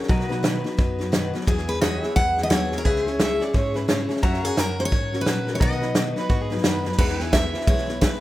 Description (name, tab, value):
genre	honky-tonk and classic country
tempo	174 BPM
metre	4/4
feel	swing 61% on 8ths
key	unclear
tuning	A4 = 440 Hz
part	picked steel-string acoustic guitar	accompaniment	0.0-8.2 s	B2 to B4	-27 LUFS	left 3 dB	none
part	pedal steel guitar	sustained chords	0.0-8.2 s	E4 to A#5	-32 LUFS	right 1 dB	lush chorus
part	natural country drum kit	drums	0.0-8.1 s	crash cymbal, hi-hat, kick drum, snare drum	-23 LUFS	equal	none
part	mellow tine electric piano	bass	0.1-8.2 s	B1 to B2	-30 LUFS	equal	medium stereo tremolo
part	picked steel-string acoustic guitar	melody	1.5-8.2 s	F#4 to F#5	-26 LUFS	equal	none
part	rich fiddle	second line	3.2-4.1, 6.2-6.9 s	F#4 to E5	-30 LUFS	right 3 dB	none
room	light reverb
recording	rough home demo mix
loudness	-20 LUFS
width	side -15 dB against mid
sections	0.0-7.0 A section; 7.0-8.2 B section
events	none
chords	0.1 B; 1.5 Eadd9; 2.9 C#m; 4.2 F#; 5.6 B; 7.0 E